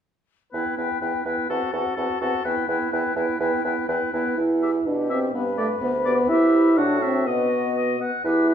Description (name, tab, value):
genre	quick classical-period movement for wind quintet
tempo	125 BPM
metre	2/4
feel	straight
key	E minor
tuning	A4 = 440 Hz
part	mellow concert flute	melody	0.5-8.0 s	G4 to G5	-30 LUFS	left 11 dB	none
part	warm oboe	second line	0.5-8.5 s	A4 to F#5	-28 LUFS	left 4 dB	none
part	clear clarinet	accompaniment	0.5-8.5 s	E4 to G4	-30 LUFS	right 8 dB	none
part	mellow French horn	accompaniment	0.5-8.5 s	A3 to E4	-23 LUFS	equal	none
part	mellow bassoon	bass	0.5-8.5 s	D2 to C3	-27 LUFS	right 3 dB	none
room	wet recital hall reverb, RT60 1.4 s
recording	minimal, uncompressed stereo recording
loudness	-20 LUFS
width	side -8 dB against mid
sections	0.5-4.4 A section; 4.4-8.5 B section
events	none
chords	0.5 Em; 1.5 F#m7b5/E; 2.4 Em; 5.3 G; 6.3 C; 6.8 F#dim/A; 7.3 B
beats	| 0.53 1.01 | 1.49 1.97 | 2.44 2.92 | 3.40 3.88 | 4.38 4.86 | 5.34 5.82 | 6.29 6.77 | 7.26 7.75 | 8.25